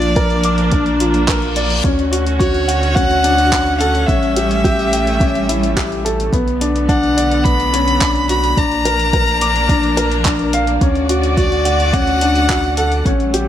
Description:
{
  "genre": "piano and strings electronica",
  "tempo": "107 BPM",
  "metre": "4/4",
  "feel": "straight",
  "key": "D major",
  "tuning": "A4 = 440 Hz",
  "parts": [
    { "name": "warm violin", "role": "melody", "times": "0.0-13.0 s", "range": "C#5 to B5", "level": "-19 LUFS", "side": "equal", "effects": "none" },
    { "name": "rich studio string section", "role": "sustained chords", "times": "0.0-13.5 s", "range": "D3 to D5", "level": "-22 LUFS", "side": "equal", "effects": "sidechain pumping" },
    { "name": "dark baby grand piano", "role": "riff", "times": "0.0-13.5 s", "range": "B3 to D6", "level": "-18 LUFS", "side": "left 2 dB", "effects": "tape echo" },
    { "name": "round analog bass", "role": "bass", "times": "0.0-13.5 s", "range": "A1 to D2", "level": "-20 LUFS", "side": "right 1 dB", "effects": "sidechain pumping" },
    { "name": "deep house drum kit", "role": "drums", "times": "0.0-13.4 s", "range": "handclaps, hi-hat", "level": "-24 LUFS", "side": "equal", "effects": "none" },
    { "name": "electronic kick drum", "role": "drums", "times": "0.2-13.2 s", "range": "none", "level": "-18 LUFS", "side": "equal", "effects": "none" },
    { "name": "reverse cymbal", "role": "sound effects", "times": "1.2-1.8 s", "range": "none", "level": "-25 LUFS", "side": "left 3 dB", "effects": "none" }
  ],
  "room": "moderate scoring stage reverb, RT60 1.6 s",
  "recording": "none",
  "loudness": "-13 LUFS",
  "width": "side -11 dB against mid",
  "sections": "0.0-13.5 A section",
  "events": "reverse cymbal 1.2-1.8",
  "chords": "0.0 Bb; 1.8 Dmaj7; 4.1 A7; 6.3 Bmadd9; 8.6 Bb; 10.8 Dmaj7"
}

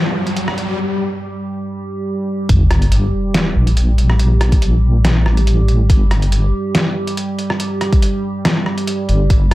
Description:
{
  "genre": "deep dubstep",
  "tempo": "141 BPM",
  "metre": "4/4",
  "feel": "swing 54% on 16ths, half-time",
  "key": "G minor",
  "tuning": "A4 = 439 Hz",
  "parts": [
    { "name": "dark analog pad", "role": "sustained chords", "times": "0.0-9.5 s", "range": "G3 to G4", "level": "-21 LUFS", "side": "right 2 dB", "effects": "wide subtle chorus" },
    { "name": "riser and sub drop", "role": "sound effects", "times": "0.0-4.2 s", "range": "none", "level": "-20 LUFS", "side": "equal", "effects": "none" },
    { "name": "trip hop sampler-style drum kit", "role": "drums", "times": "0.3-9.5 s", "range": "hi-hat, rim click, snare drum", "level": "-20 LUFS", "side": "equal", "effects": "overdrive, studio reverb" },
    { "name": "deep soft wobble bass", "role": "bass", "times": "2.5-6.5, 9.1-9.5 s", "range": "G1 to Bb1", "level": "-13 LUFS", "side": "equal", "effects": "chorus" },
    { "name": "electronic kick drum", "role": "drums", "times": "2.5-9.4 s", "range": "none", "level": "-13 LUFS", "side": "equal", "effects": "studio reverb" }
  ],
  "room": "light reverb",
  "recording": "none",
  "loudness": "-13 LUFS",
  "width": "side -16 dB against mid",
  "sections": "0.0-2.5 A section; 2.5-9.5 B section",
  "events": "build-up 0.0-2.5; riser 0.0-0.8; break 0.8-2.5; drop 2.5-9.5; impact 2.5-4.2",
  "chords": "0.0 N.C.; 2.5 Gm"
}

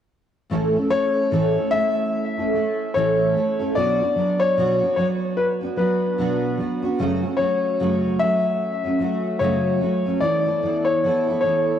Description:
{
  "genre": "acoustic pop",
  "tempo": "74 BPM",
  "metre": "4/4",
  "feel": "swing 60% on 16ths",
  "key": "A major",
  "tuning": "A4 = 435 Hz",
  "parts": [
    { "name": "picked steel-string acoustic guitar", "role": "accompaniment", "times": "0.5-11.8 s", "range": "F#2 to A4", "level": "-22 LUFS", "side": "right 2 dB", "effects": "double-tracked left and right, cassette tape" },
    { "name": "clear upright piano", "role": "melody", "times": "0.9-11.8 s", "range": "B4 to E5", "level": "-21 LUFS", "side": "left 3 dB", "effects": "tape echo" }
  ],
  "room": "wet lush hall reverb, RT60 2.6 s",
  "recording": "home recording on cassette",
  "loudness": "-19 LUFS",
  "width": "side -9 dB against mid",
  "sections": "0.5-11.8 A section",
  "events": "none",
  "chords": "0.5 A; 3.7 Bm; 7.0 F#m; 10.2 Esus4"
}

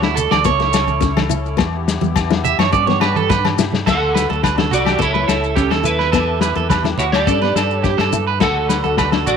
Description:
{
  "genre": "highlife guitar band",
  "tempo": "105 BPM",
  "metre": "4/4",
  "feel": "straight",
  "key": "D major",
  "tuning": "A4 = 440 Hz",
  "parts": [
    { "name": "nylon-string guitar", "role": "accompaniment", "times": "0.0-9.3 s", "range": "G3 to E4", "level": "-24 LUFS", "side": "left 11 dB", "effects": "none" },
    { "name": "musette accordion", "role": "sustained chords", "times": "0.0-9.4 s", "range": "B3 to B4", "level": "-29 LUFS", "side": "left 10 dB", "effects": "none" },
    { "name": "electric guitar at the edge of break-up", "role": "arpeggios", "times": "0.0-9.4 s", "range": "E4 to E5", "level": "-19 LUFS", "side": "right 11 dB", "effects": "tape echo" },
    { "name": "fingered electric bass", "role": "bass", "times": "0.0-9.4 s", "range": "A1 to G2", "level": "-22 LUFS", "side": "equal", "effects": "none" },
    { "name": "vintage drum kit", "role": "drums", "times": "0.0-9.3 s", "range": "crash cymbal, kick drum, snare drum", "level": "-20 LUFS", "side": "left 5 dB", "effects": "none" },
    { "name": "congas", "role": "percussion", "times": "0.2-9.4 s", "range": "none", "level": "-25 LUFS", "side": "right 8 dB", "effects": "none" },
    { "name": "maracas", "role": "percussion", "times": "0.2-9.4 s", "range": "none", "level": "-30 LUFS", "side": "left 15 dB", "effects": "none" },
    { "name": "agogo bells", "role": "percussion", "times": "0.3-9.1 s", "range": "none", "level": "-27 LUFS", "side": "left 16 dB", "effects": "none" },
    { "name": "clean electric guitar", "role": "melody", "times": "3.9-9.4 s", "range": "C#4 to F#5", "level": "-20 LUFS", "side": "right 1 dB", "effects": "ensemble chorus" }
  ],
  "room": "moderate spring reverb, RT60 1.4 s, studio reverb",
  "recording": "1960s-style stereo with parts hard left and right",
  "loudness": "-14 LUFS",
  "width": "side -7 dB against mid",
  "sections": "0.0-3.9 A section; 3.9-9.4 B section",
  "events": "clean electric guitar solo 0.0-3.9; drum fill 3.3-3.9",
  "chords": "0.5 A/C#; 1.6 Em; 2.7 G; 3.9 D; 5.0 A/C#; 6.1 Em; 7.3 G; 8.4 D"
}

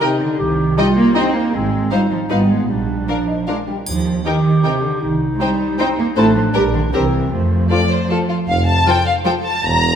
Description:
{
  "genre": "cinematic, playful, whimsical film cue",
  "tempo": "156 BPM",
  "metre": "3/4",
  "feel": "straight",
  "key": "F major from 6.2 s",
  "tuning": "A4 = 442 Hz",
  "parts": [
    { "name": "warm studio violin section", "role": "melody", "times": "0.0-10.0 s", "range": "C5 to Bb5", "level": "-21 LUFS", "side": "left 2 dB", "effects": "none" },
    { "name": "mellow clarinet", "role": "second line", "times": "0.0-8.3 s", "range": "A3 to G4", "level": "-22 LUFS", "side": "left 1 dB", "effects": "none" },
    { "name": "rich studio violin section", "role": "second line", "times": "0.0-9.3 s", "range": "F4 to Eb5", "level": "-26 LUFS", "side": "left 3 dB", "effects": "none" },
    { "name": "warm studio viola section", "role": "accompaniment", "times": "0.0-9.3 s", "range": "F3 to Bb4", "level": "-24 LUFS", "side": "right 1 dB", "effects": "none" },
    { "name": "warm French horn section", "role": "sustained chords", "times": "0.0-8.2 s", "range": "C4 to Bb4", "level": "-26 LUFS", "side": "left 4 dB", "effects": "none" },
    { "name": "warm studio cello section", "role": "bass", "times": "0.0-10.0 s", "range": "E2 to C4", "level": "-18 LUFS", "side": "right 2 dB", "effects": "none" },
    { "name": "rich studio double bass section", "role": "bass", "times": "0.4-10.0 s", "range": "E1 to F2", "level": "-22 LUFS", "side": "right 1 dB", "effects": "none" },
    { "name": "triangle", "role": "percussion", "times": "3.9-4.6 s", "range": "none", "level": "-32 LUFS", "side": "equal", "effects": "none" },
    { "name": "warm tuba", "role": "bass", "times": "8.5-10.0 s", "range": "E1 to F1", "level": "-24 LUFS", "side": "right 3 dB", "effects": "none" }
  ],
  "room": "wet scoring stage reverb, RT60 1.9 s",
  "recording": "minimal, uncompressed stereo recording",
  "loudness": "-14 LUFS",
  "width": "side -8 dB against mid",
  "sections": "0.0-8.5 A section; 8.5-10.0 B section",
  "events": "none",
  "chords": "0.4 Cm; 1.5 Fm7/Ab; 2.7 Bb; 3.9 Eb; 5.0 Cm; 6.2 Am; 6.5 Gm/Bb; 6.9 C7; 7.3 F"
}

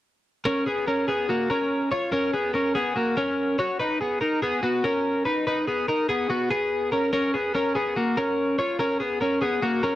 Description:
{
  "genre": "indie pop",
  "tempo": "144 BPM",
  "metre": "4/4",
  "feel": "straight",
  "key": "F# major",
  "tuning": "A4 = 439 Hz",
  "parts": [
    { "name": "twelve-string electric guitar", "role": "solo", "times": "0.5-10.0 s", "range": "A#3 to C#5", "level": "-22 LUFS", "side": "equal", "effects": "none" }
  ],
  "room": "moderate studio reverb, RT60 0.6 s",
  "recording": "dark, warm production",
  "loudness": "-22 LUFS",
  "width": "side -14 dB against mid",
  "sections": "0.5-7.1 A section; 7.1-10.0 B section",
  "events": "none",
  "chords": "0.5 F#; 3.6 B; 7.1 F#"
}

